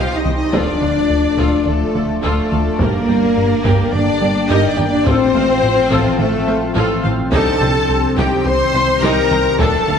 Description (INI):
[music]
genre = cinematic, hybrid orchestral and electronic film score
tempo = 106 BPM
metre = 4/4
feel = straight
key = unclear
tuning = A4 = 442 Hz
[part]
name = rich symphonic violin section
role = melody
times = 0.0-10.0 s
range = A4 to C6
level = -26 LUFS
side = left 2 dB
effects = none
[part]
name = warm symphonic violin section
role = second line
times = 0.0-10.0 s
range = A4 to C6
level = -23 LUFS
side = left 5 dB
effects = none
[part]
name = clear symphonic viola section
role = accompaniment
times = 0.0-10.0 s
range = D4 to G5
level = -24 LUFS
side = right 1 dB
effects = none
[part]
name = mellow French horn section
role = sustained chords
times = 0.0-10.0 s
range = A3 to C5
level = -20 LUFS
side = left 5 dB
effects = none
[part]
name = sweeping resonant pad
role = sustained chords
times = 0.0-10.0 s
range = G3 to F5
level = -25 LUFS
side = equal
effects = chorus
[part]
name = warm trombone section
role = sustained chords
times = 0.0-10.0 s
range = D3 to Eb4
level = -25 LUFS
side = left 1 dB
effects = none
[part]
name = rubbery square bass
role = riff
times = 0.0-10.0 s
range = C2 to A3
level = -21 LUFS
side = right 1 dB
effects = none
[part]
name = rich symphonic cello section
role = bass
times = 0.0-10.0 s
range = A3 to C5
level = -22 LUFS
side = right 3 dB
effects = none
[part]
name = rich symphonic double bass section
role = bass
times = 0.0-10.0 s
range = G1 to D2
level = -24 LUFS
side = right 3 dB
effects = none
[part]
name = sub bass with octave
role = bass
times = 0.0-10.0 s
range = D1 to C2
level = -28 LUFS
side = equal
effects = none
[part]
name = impact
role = sound effects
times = 0.2-0.5 s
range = none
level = barely audible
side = none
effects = none
[part]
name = bright concert grand piano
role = texture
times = 0.0-9.6 s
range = D4 to G5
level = -31 LUFS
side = left 3 dB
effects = none
[part]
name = taiko ensemble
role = drums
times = 0.3-10.0 s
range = none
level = -24 LUFS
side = equal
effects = none
[sound]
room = wet scoring stage reverb, RT60 1.4 s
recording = none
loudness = -13 LUFS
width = side -7 dB against mid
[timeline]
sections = 0.0-10.0 A section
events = impact 0.0-0.5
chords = 0.0 Cm; 0.5 Dm; 2.8 Gm; 5.1 F/A; 7.3 Cm